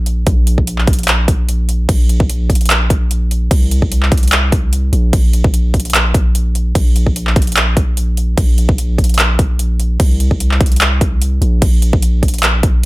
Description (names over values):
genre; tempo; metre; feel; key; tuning
future bass; 148 BPM; 4/4; swing 54% on 16ths, half-time; unclear; A4 = 441 Hz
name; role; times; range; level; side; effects
long sustained 808-style bass; bass; 0.0-12.9 s; Bb1 to C2; -14 LUFS; equal; sidechain pumping
big-room dance drum kit; drums; 0.1-12.7 s; crash cymbal, handclaps, hi-hat; -17 LUFS; equal; overdrive
electronic kick drum; drums; 0.3-12.7 s; none; -13 LUFS; equal; overdrive
room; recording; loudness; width
little or no reverb; none; -11 LUFS; side -20 dB against mid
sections
0.0-12.9 A section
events
none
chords
none